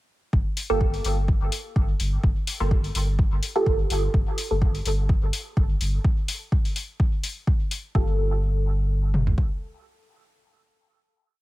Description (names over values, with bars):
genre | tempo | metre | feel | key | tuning
dub techno | 126 BPM | 4/4 | swing 55% on 16ths | G minor | A4 = 440 Hz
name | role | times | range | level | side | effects
warm sub bass | bass | 0.3-9.3 s | G1 | -24 LUFS | equal | sidechain pumping
deep house drum kit | drums | 0.3-9.5 s | kick drum, toms | -22 LUFS | equal | overdrive
electronic hi-hat | drums | 0.6-7.8 s | none | -31 LUFS | left 3 dB | overdrive
filtered dub chord stab | stabs | 0.7-4.7, 7.9-11.4 s | Bb3 to A4 | -28 LUFS | right 2 dB | phaser, sidechain pumping, dub echo
room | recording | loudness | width
little or no reverb | none | -21 LUFS | side -17 dB against mid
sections
0.3-8.0 groove; 8.0-11.4 final chord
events
filter sweep on synth stab 0.3-6.0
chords
0.3 N.C.; 8.0 Gm9